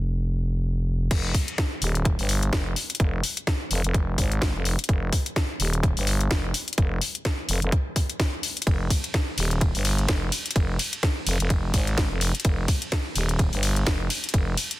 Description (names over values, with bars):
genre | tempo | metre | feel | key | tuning
bass house | 127 BPM | 4/4 | swing 57% on 16ths | F minor | A4 = 439 Hz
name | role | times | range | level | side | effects
growling FM bass | bass | 0.0-14.6 s | Eb1 to Ab1 | -25 LUFS | equal | tube saturation, sidechain pumping
electronic kick drum | drums | 1.1-14.4 s | none | -25 LUFS | equal | none
house drum kit | drums | 1.1-14.8 s | crash cymbal, hi-hat, ride cymbal, snare drum | -28 LUFS | left 2 dB | none
room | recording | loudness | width
little or no reverb | dense, heavily limited modern master | -22 LUFS | side -17 dB against mid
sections
0.0-1.1 A section; 1.1-14.8 B section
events
drop 1.1-14.8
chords
none